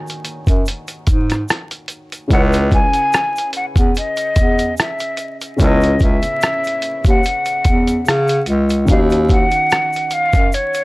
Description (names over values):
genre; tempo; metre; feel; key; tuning
lo-fi hip hop; 73 BPM; 4/4; swing 55% on 16ths; unclear; A4 = 440 Hz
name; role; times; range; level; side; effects
dark upright piano; accompaniment; 0.0-10.8 s; Db3 to Ab5; -24 LUFS; equal; cassette tape, low-pass filter
lo-fi sampler-style drum kit; drums; 0.1-10.8 s; hi-hat, kick drum, rim click; -16 LUFS; equal; none
egg shaker; percussion; 0.1-10.8 s; none; -40 LUFS; right 2 dB; none
warm bass clarinet; bass; 0.5-10.5 s; Db2 to Db3; -16 LUFS; equal; none
breathy jazz flute; melody; 2.3-10.8 s; Db5 to Ab5; -18 LUFS; left 1 dB; low-pass filter, tape echo
room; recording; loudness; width
little or no reverb; dry, gritty hardware recording, transformer saturation, vinyl crackle; -13 LUFS; side -21 dB against mid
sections
0.0-10.8 A section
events
break 0.0-2.3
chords
0.0 Ebm9; 2.3 Dbm7; 8.9 Ebm9